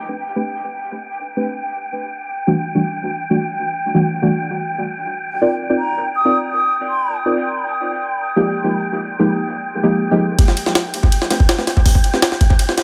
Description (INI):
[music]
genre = drum and bass, jungle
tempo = 163 BPM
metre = 4/4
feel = straight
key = A minor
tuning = A4 = 443 Hz
[part]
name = wind-like tuned noise texture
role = texture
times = 0.0-12.8 s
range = G5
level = -27 LUFS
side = equal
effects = built-in reverb
[part]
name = deep mellow chord stab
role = stabs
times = 0.4-12.2 s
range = E3 to D5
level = -22 LUFS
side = equal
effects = chorus, dub echo
[part]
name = mellow hollow concert flute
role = melody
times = 5.3-7.2 s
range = G5 to Eb6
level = -24 LUFS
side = equal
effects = dub echo
[part]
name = jungle sampler-style drum kit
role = drums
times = 10.4-12.8 s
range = hi-hat, kick drum, ride cymbal, snare drum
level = -16 LUFS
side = equal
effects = analog delay
[sound]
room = moderate echo chamber reverb, RT60 1.3 s, digital ambience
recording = echo-heavy mix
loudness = -18 LUFS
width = mono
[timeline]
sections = 0.0-10.4 A section; 10.4-12.8 B section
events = build-up 10.4-12.8; filter sweep on synth stab 10.4-12.8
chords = 0.0 Am11; 1.6 Em11; 4.5 Cm11; 7.4 Fm11; 10.4 Am11